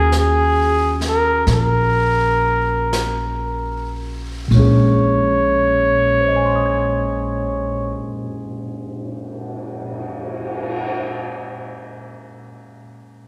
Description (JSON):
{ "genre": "jazz ballad", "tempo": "36-46 BPM", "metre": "4/4", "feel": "swing 66% on 8ths", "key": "Bb minor", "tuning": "A4 = 440 Hz", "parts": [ { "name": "breathy trumpet", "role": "melody", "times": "0.0-8.0 s", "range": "Ab4 to Db5", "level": "-20 LUFS", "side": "equal", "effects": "none" }, { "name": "mellow tine electric piano", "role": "accompaniment", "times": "0.0-13.3 s", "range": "Bb2 to Ab6", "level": "-26 LUFS", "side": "equal", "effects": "none" }, { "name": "upright bass", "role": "bass", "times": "0.0-7.9 s", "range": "Bb1 to Eb2", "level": "-23 LUFS", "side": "equal", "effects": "none" }, { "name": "jazz brush drum kit", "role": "drums", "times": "0.1-10.9 s", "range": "brushed snare drum, cymbal swell, hi-hat, kick drum, ride cymbal, snare drum", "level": "-31 LUFS", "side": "equal", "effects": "none" } ], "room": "wet scoring stage reverb, RT60 1.9 s", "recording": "recorded in a church or concert hall", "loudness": "-18 LUFS", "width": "mono", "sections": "0.0-4.5 A section; 4.5-11.2 B section", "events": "slowing down 0.0-4.5", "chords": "0.0 Ebm11; 4.5 Bbm9" }